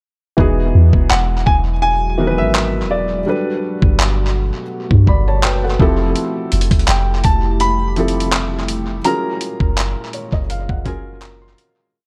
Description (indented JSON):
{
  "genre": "contemporary R&B",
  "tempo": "83 BPM",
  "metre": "4/4",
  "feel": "swing 54% on 16ths",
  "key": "unclear",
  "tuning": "A4 = 440 Hz",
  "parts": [
    { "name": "felt-muted upright piano", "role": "accompaniment", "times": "0.4-12.0 s", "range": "D#3 to C6", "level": "-24 LUFS", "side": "equal", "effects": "tape echo" },
    { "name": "deep dark ambient pad", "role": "sustained chords", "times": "1.3-11.9 s", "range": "A#2 to G4", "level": "-29 LUFS", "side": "equal", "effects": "chorus, built-in reverb" },
    { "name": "soft 808-style bass", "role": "bass", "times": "0.4-11.6 s", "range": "E1 to G2", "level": "-19 LUFS", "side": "equal", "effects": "none" },
    { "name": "dusty soul sampler-style drum kit", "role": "drums", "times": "0.4-11.8 s", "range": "handclaps, hi-hat, kick drum", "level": "-20 LUFS", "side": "equal", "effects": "tape echo" },
    { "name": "warm baby grand piano", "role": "melody", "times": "1.1-11.2 s", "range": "D5 to B5", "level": "-23 LUFS", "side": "equal", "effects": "tape echo" }
  ],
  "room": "little or no reverb",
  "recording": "echo-heavy mix",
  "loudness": "-16 LUFS",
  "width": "mono",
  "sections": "0.4-11.9 verse",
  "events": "fade-out 9.1-11.9; felt piano fill 9.8-11.9",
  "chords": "0.4 Emaj9; 3.3 Gmaj9; 5.8 Fmaj9; 9.1 F#maj9"
}